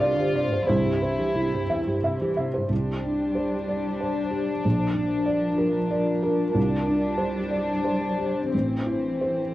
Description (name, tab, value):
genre	neoclassical piano and strings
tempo	91 BPM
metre	3/4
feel	rubato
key	C mixolydian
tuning	A4 = 442 Hz
part	rich studio violin section	melody	0.0-9.5 s	C4 to F4	-30 LUFS	left 2 dB	cassette tape
part	dark cello	second line	0.0-9.5 s	E2 to G3	-31 LUFS	right 1 dB	cassette tape
part	felt-muted upright piano	accompaniment	0.0-9.5 s	A1 to E5	-25 LUFS	right 1 dB	cassette tape
part	glassy FM pad	sustained chords	0.0-9.5 s	D4 to C5	-30 LUFS	left 3 dB	ensemble chorus, built-in reverb, phaser, cassette tape
room	moderate studio reverb, RT60 0.5 s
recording	home recording on cassette, nothing above 10.5 kHz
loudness	-22 LUFS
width	side -15 dB against mid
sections	0.0-2.7 A section; 2.7-9.5 B section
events	none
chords	0.0 Csus2; 0.7 C; 2.7 Csus2; 4.6 Bb; 6.6 Csus2; 8.5 Am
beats	0.01 | 0.68 1.35 2.03 | 2.71 3.36 4.01 | 4.65 5.28 5.92 | 6.56 7.20 7.86 | 8.53 9.20